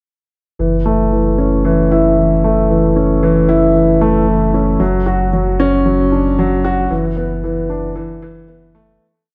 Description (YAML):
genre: piano and strings electronica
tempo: 114 BPM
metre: 4/4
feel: straight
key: F# minor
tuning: A4 = 440 Hz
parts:
  - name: dark upright piano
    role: riff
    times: 0.6-9.0 s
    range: E3 to F#4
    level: -15 LUFS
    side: equal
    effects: tape echo
  - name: warm sub bass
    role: bass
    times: 0.6-9.0 s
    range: F#1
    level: -21 LUFS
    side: equal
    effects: none
room: moderate echo chamber reverb, RT60 1.3 s, small room ambience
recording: none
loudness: -14 LUFS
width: mono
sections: 0.6-9.0 build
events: build-up 0.6-9.0; fade-out 6.2-9.0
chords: 0.6 F#m7; 4.8 Dmaj7/F#; 6.9 E7sus4/F#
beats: | 0.59 1.12 1.65 2.17 | 2.70 3.23 3.75 4.28 | 4.80 5.33 5.86 6.38 | 6.91 7.44 7.96 8.49